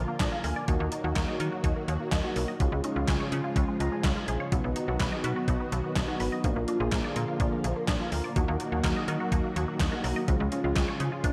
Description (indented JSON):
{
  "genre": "synth-pop",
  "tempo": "125 BPM",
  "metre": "4/4",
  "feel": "straight",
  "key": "Eb minor",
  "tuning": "A4 = 440 Hz",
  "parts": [
    { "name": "string machine, cellos", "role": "sustained chords", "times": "0.0-11.3 s", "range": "Db3 to Gb4", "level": "-36 LUFS", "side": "equal", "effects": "ensemble chorus" },
    { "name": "resonant blip pluck", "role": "arpeggios", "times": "0.0-11.3 s", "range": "F3 to Eb5", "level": "-39 LUFS", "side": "equal", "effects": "phaser, diffuse ambient delay" },
    { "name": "slap-like FM bass", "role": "bass", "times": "0.0-11.3 s", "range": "Ab1 to Eb3", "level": "-33 LUFS", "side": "equal", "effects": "none" },
    { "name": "soft electric-piano-like synth keys", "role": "accompaniment", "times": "0.2-11.3 s", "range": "Ab3 to Bb5", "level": "-36 LUFS", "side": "equal", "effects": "chorus, phaser" },
    { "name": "gated 80s digital drum machine", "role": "drums", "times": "0.2-11.3 s", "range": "handclaps, hi-hat, kick drum, snare drum", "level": "-32 LUFS", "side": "equal", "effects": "gated reverb, gated reverb snare" }
  ],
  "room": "moderate plate reverb, RT60 1.7 s",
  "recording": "dreamy mix soaked in reverb",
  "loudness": "-29 LUFS",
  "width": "mono",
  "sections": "0.0-11.3 A section",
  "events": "synth keys fill 0.0-0.7, 3.6-4.5",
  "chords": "0.0 Bb; 0.7 Ebm; 2.6 Db; 4.5 B; 6.4 Bb; 8.4 Ebm; 10.3 Db"
}